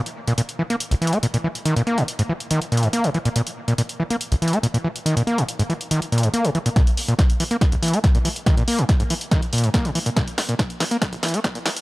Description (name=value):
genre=driving peak-time techno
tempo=141 BPM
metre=4/4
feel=straight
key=unclear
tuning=A4 = 443 Hz
part: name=punchy analog drum machine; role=drums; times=0.1-11.8 s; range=hi-hat, snare drum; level=-26 LUFS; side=equal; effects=sidechain pumping on hats, high-pass filter on hats, high-pass filter on snare
part: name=screaming distorted acid line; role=riff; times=0.3-11.7 s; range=Bb1 to Bb3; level=-21 LUFS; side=equal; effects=distortion, chorus, sidechain pumping, tape echo
part: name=electronic kick drum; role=drums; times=6.8-11.5 s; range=none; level=-18 LUFS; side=equal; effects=none
room=little or no reverb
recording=dry, gritty hardware recording, high-pass filter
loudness=-18 LUFS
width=side -21 dB against mid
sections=0.0-6.8 A section; 6.8-11.8 B section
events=build-up 6.8-11.8; drum fill 6.8-11.8; filter sweep 6.8-11.8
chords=none